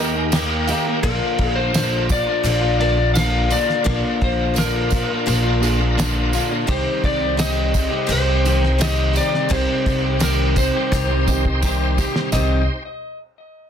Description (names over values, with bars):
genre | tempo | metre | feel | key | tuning
folk rock and heartland rock | 85 BPM | 4/4 | straight | C minor | A4 = 445 Hz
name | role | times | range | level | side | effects
electric slide guitar | melody | 0.0-12.7 s | Bb4 to F5 | -24 LUFS | left 3 dB | plate reverb, digital delay
dark upright piano | accompaniment | 0.0-12.7 s | Bb3 to Bb5 | -32 LUFS | right 7 dB | none
picked steel-string acoustic guitar | accompaniment | 0.0-12.6 s | Bb2 to G4 | -27 LUFS | left 7 dB | plate reverb
bright tonewheel organ | sustained chords | 0.0-12.8 s | Bb3 to C5 | -29 LUFS | equal | slow rotary speaker, chorus vibrato
electric guitar at the edge of break-up | riff | 0.0-12.6 s | Bb2 to G4 | -24 LUFS | right 1 dB | none
upright bass | bass | 0.0-12.7 s | Bb1 to Eb2 | -22 LUFS | equal | none
cloth-damped thuddy drum kit | drums | 0.3-12.5 s | crash cymbal, kick drum, snare drum, toms | -23 LUFS | equal | none
tambourine | percussion | 0.3-12.7 s | none | -31 LUFS | right 13 dB | none
room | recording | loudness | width
light reverb | dense, heavily limited modern master | -16 LUFS | side -8 dB against mid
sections
0.0-12.3 A section; 12.3-13.7 B section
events
upright piano fill 0.0-1.0; drum fill 10.9-12.3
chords
0.0 Eb; 1.0 Bb; 6.7 Cm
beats
0.33 | 1.03 1.74 2.45 3.16 | 3.86 4.57 5.28 5.98 | 6.69 7.39 8.10 8.81 | 9.51 10.22 10.92 11.63 | 12.33